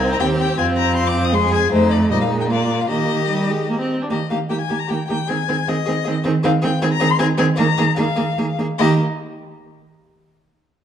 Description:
quick classical-period movement for string quartet; 144-161 BPM; 3/4; rubato; Eb major; A4 = 440 Hz
dark violin; melody; 0.0-9.0 s; C5 to Eb6; -22 LUFS; left 9 dB
clear violin; second line; 0.0-9.0 s; Eb4 to Ab4; -26 LUFS; left 3 dB
clear viola; accompaniment; 0.0-9.0 s; G3 to D4; -21 LUFS; right 1 dB
rich cello; bass; 0.0-9.0 s; C2 to Eb3; -21 LUFS; right 3 dB
moderate recital hall reverb, RT60 1.8 s; dark, warm production; -16 LUFS; side -9 dB against mid
0.0-4.1 A section; 4.1-8.8 B section; 8.8-10.0 C section
0.0 Cm; 0.6 Fm; 1.7 F7; 2.1 Eb/Bb; 2.5 Bb; 2.9 Eb; 5.3 Ab/Eb; 7.6 Bb5/Eb

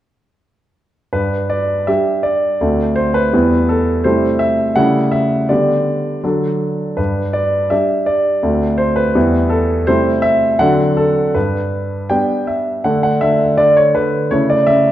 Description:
classical-period piano sonatina; 82 BPM; 2/4; straight; G major; A4 = 442 Hz
warm grand piano; solo; 1.1-14.9 s; D2 to G5; -13 LUFS; equal
wet recital hall reverb, RT60 1.3 s; dark, warm production; -13 LUFS; side -12 dB against mid
1.1-12.9 A section; 12.9-14.9 B section
1.1 G5; 2.6 D7; 3.3 Em; 4.0 Am7/C; 4.8 A7/C#; 5.5 G/D; 6.2 D; 7.0 G5; 8.4 D7; 9.2 Em; 9.9 Am7/C; 10.6 D7; 11.4 G; 12.9 D5; 14.3 A/C#

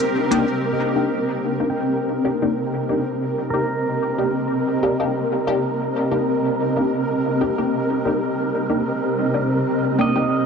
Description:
ambient dub; 93 BPM; 4/4; swing 54% on 16ths; C minor; A4 = 439 Hz
granular cloud pad; sustained chords; 0.0-10.5 s; C4 to Eb5; -21 LUFS; equal; built-in reverb
wind-like tuned noise texture; texture; 0.1-10.5 s; Bb4; -30 LUFS; right 4 dB; built-in reverb
filtered dub chord stab; stabs; 0.3-10.3 s; Bb3 to G4; -24 LUFS; left 2 dB; phaser, analog chorus, dub echo
electronic hi-hat; drums; 0.3-0.5 s; -31 LUFS; left 2 dB; low-pass filter on hats, studio reverb, low-pass filter on snare, dub echo
pedal steel guitar; arpeggios; 0.7-10.5 s; Bb4 to G5; -30 LUFS; right 2 dB; low-pass filter, tape echo
moderate lush hall reverb, RT60 1.9 s, digital ambience; dark, warm production; -19 LUFS; side -6 dB against mid
0.6-10.5 A section
filter sweep on pedal steel guitar 0.6-10.5
0.0 Cm7

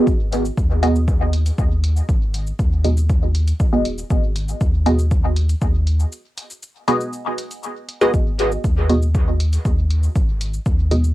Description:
dub techno; 119 BPM; 4/4; straight; G# minor; A4 = 439 Hz
filtered dub chord stab; stabs; 0.0-11.1 s; B3 to D#5; -20 LUFS; right 1 dB; phaser, sidechain pumping, cassette tape, dub echo
soft dub sub bass; bass; 0.1-11.1 s; D#1 to D#2; -19 LUFS; equal; sidechain pumping
electronic kick drum; drums; 0.1-10.8 s; -19 LUFS; equal; overdrive, cassette tape
electronic shaker and hi-hat; drums; 0.1-11.1 s; -34 LUFS; equal; overdrive, cassette tape
little or no reverb; home recording on cassette; -16 LUFS; side -16 dB against mid
0.0-8.1 A section; 8.1-11.1 A section
break 6.1-8.1
0.0 G#m7

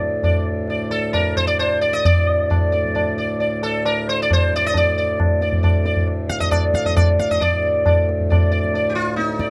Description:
indian classical, Hindustani; 134 BPM; 3/4; straight; D raga bhairavi; A4 = 441 Hz
pedal harmonium; drone; 0.0-9.5 s; D2 to A2; -28 LUFS; equal
tabla; percussion; 0.0-9.5 s; -22 LUFS; equal
sitar; melody; 0.2-9.5 s; Eb4 to F5; -22 LUFS; equal
light reverb; close, detailed microphones; -19 LUFS; mono
0.0-7.4 A section; 7.4-9.5 B section
speeding up 0.0-9.5

